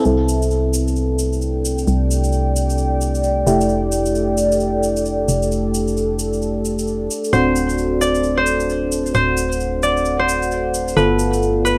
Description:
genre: UK garage, two-step garage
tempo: 132 BPM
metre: 4/4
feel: swing 60% on 16ths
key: C major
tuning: A4 = 437 Hz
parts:
  - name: FM electric piano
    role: stabs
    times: 0.0-11.8 s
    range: A3 to A4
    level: -23 LUFS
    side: equal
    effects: chorus, low-pass filter, cassette tape, tape echo
  - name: cabasa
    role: percussion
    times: 0.0-11.8 s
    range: none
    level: -31 LUFS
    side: equal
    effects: none
  - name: deep dark ambient pad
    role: texture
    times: 0.3-11.8 s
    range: A4 to A5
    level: -25 LUFS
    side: equal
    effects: chorus, built-in reverb, cassette tape
  - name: organ-like FM bass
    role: bass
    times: 0.1-11.8 s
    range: D1 to C2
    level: -24 LUFS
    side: equal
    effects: none
  - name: concert harp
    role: melody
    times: 7.3-11.8 s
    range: B4 to D5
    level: -22 LUFS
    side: equal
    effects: cassette tape, tape echo
room: moderate studio reverb, RT60 0.5 s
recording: home recording on cassette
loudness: -19 LUFS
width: mono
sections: 0.1-11.8 A section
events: none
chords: 0.1 C6; 3.5 Fmaj9; 7.3 D7; 11.0 G9

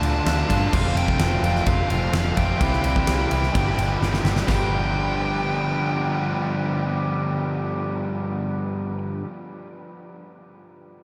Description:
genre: rock, shoegaze and dream pop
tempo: 128 BPM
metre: 4/4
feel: straight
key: G mixolydian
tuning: A4 = 440 Hz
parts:
  - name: bluesy overdriven lead guitar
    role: melody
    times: 0.0-9.0 s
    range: F5 to A5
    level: -31 LUFS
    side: equal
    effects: distortion, tape echo
  - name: biting overdriven guitar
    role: riff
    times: 0.0-9.3 s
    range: F2 to G4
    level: -32 LUFS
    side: equal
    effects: lush chorus
  - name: biting overdriven guitar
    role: riff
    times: 0.0-9.3 s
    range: F2 to G4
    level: -31 LUFS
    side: equal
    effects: reverse reverb
  - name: overdriven semi-hollow guitar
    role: riff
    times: 0.0-9.3 s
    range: F2 to D4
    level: -31 LUFS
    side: equal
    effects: none
  - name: vintage muted picked electric bass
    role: bass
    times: 0.0-9.2 s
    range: F1 to G2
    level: -27 LUFS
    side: equal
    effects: none
  - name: huge arena drum kit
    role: drums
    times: 0.0-4.6 s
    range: crash cymbal, kick drum, ride cymbal, snare drum, splash cymbal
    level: -27 LUFS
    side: equal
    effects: none
room: wet huge ambient reverb, RT60 7.9 s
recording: dreamy mix soaked in reverb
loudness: -23 LUFS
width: mono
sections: 0.0-4.5 A section; 4.5-8.2 B section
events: drum fill 4.0-4.5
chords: 0.0 Dm; 0.7 F; 2.6 C; 3.5 G7

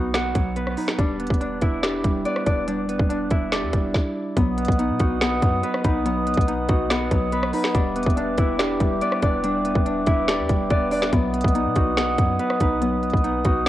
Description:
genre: hip hop, trap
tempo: 142 BPM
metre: 4/4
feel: half-time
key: E minor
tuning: A4 = 439 Hz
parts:
  - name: mellow electric guitar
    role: accompaniment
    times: 0.0-13.7 s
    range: F#3 to F#5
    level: -26 LUFS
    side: right 3 dB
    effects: wide subtle chorus, cassette tape
  - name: Celtic harp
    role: arpeggios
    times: 0.0-13.7 s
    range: B3 to D5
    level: -27 LUFS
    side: left 3 dB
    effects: cassette tape, analog delay
  - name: clean 808-style bass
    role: bass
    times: 0.0-13.7 s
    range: E1 to B2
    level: -30 LUFS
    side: equal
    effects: none
  - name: trap drum kit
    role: drums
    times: 0.1-13.7 s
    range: finger snaps, hi-hat, kick drum, rim click, snare drum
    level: -22 LUFS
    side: equal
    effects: none
  - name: glass harmonica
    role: sustained chords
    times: 4.4-13.7 s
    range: B4 to D#6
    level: -26 LUFS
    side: left 1 dB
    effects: cassette tape
room: moderate spring reverb, RT60 1.4 s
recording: home recording on cassette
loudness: -19 LUFS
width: side -14 dB against mid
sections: 0.0-4.4 A section; 4.4-13.7 B section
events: none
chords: 0.0 B; 1.0 Em7; 4.4 B; 7.7 Em7; 11.1 B

